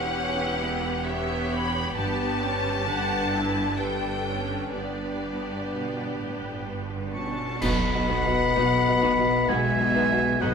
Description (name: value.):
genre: cinematic, emotional film score for orchestra.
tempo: 64 BPM.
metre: 3/4.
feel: uneven beats, rubato.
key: unclear.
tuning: A4 = 439 Hz.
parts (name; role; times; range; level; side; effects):
rich studio violin section; melody; 0.0-10.5 s; D5 to B5; -31 LUFS; left 4 dB; none.
clear symphonic violin section; second line; 0.0-10.5 s; F#4 to C#5; -34 LUFS; left 1 dB; none.
clear symphonic viola section; accompaniment; 0.0-10.5 s; D#3 to F#5; -32 LUFS; right 2 dB; none.
dark grand piano; accompaniment; 0.0-10.5 s; B1 to F#5; -31 LUFS; left 1 dB; none.
clear symphonic cello section; bass; 0.0-10.5 s; E2 to B2; -32 LUFS; right 3 dB; none.
rich symphonic double bass section; bass; 0.0-10.5 s; E1 to B1; -35 LUFS; right 3 dB; none.
cymbal swell, clash cymbals and concert bass drum; percussion; 4.7-9.4 s; none; -34 LUFS; right 1 dB; none.
warm oboe; second line; 7.1-10.5 s; F#5 to C#6; -25 LUFS; left 1 dB; none.
mellow French horn section; sustained chords; 7.1-10.5 s; F#3 to C#4; -29 LUFS; left 6 dB; none.
room: wet scoring stage reverb, RT60 1.9 s.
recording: minimal, uncompressed stereo recording.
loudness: -23 LUFS.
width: side -6 dB against mid.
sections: 0.0-7.6 A section; 7.6-10.5 A section.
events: band accent 7.6-8.6.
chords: 0.0 Em; 2.0 G; 7.6 B.